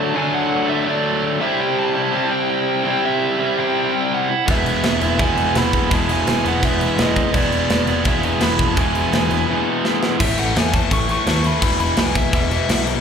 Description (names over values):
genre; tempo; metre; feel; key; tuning
punk rock; 167 BPM; 4/4; straight; unclear; A4 = 441 Hz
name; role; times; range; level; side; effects
dark smooth lead guitar; melody; 0.0-12.8 s; D5 to C#6; -24 LUFS; right 2 dB; overdrive, slapback echo, tape echo
cranked stack guitar; riff; 0.0-13.0 s; E2 to D4; -22 LUFS; left 11 dB; overdrive, slapback echo
overdriven electric guitar; riff; 0.0-10.2 s; C3 to E4; -21 LUFS; right 10 dB; slapback echo
picked electric bass; bass; 4.5-12.9 s; E1 to E2; -23 LUFS; equal; none
tight metal drum kit; drums; 4.5-12.9 s; crash cymbal, kick drum, snare drum; -21 LUFS; equal; none
room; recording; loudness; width
light reverb; live gig heard through the venue's PA, club reverb; -16 LUFS; side -7 dB against mid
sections
0.0-10.2 A section; 10.2-13.0 B section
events
drum fill 9.8-10.2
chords
0.0 D; 1.4 C; 4.5 E; 10.2 A; 11.6 E5